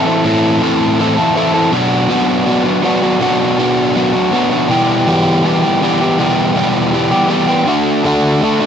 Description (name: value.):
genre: rock.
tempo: 161 BPM.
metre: 4/4.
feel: straight.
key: unclear.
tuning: A4 = 439 Hz.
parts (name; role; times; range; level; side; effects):
crunchy overdriven guitar; solo; 0.0-8.7 s; E2 to A4; -11 LUFS; equal; none.
room: moderate booth ambience, RT60 0.2 s.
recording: none.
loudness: -11 LUFS.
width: side -8 dB against mid.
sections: 0.0-8.7 A section.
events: none.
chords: 0.0 Am; 1.7 Bm; 4.7 Em; 7.7 D.